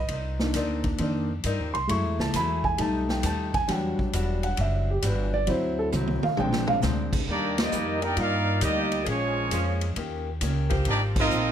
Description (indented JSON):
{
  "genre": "jazz, big band swing",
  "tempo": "134 BPM",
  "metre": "4/4",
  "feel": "swing 67% on 8ths",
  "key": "Eb major from 7.3 s",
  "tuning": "A4 = 440 Hz",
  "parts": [
    { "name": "warm concert grand piano", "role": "accompaniment", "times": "0.0-7.2 s", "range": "Eb3 to C#6", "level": "-27 LUFS", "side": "right 1 dB", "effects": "none" },
    { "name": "upright bass", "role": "bass", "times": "0.0-11.5 s", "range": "E1 to G2", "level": "-29 LUFS", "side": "equal", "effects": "none" },
    { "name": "picked old ladder-braced acoustic guitar", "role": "accompaniment", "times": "0.1-11.5 s", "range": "Ab2 to D5", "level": "-36 LUFS", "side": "left 4 dB", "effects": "none" },
    { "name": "swinging big-band drum kit", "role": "drums", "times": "0.1-11.4 s", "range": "crash cymbal, hi-hat, kick drum, ride cymbal, snare drum, toms", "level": "-31 LUFS", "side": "equal", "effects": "none" },
    { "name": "warm trumpet section", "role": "melody", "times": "7.3-11.5 s", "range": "Bb3 to G5", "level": "-27 LUFS", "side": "right 1 dB", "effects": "none" },
    { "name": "warm trombone section", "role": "second line", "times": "7.3-11.5 s", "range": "F3 to G4", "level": "-31 LUFS", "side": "right 1 dB", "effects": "none" },
    { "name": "warm saxophone section", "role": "sustained chords", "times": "8.6-11.3 s", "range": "F3 to Ab4", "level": "-34 LUFS", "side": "left 1 dB", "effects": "none" }
  ],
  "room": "light reverb",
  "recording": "none",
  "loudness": "-23 LUFS",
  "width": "side -9 dB against mid",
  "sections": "0.0-7.3 A section; 7.3-11.5 B section",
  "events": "grand piano solo 0.0-7.3; drum fill 5.9-6.8; band accent 7.5, 11.1",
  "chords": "0.1 Cm9; 1.9 F#m9; 2.8 Baug7; 3.7 Em9; 5.5 D9; 6.4 Bb9; 7.3 Ebmaj7; 9.1 Bbm7; 10.0 Eb7; 10.9 Ab69"
}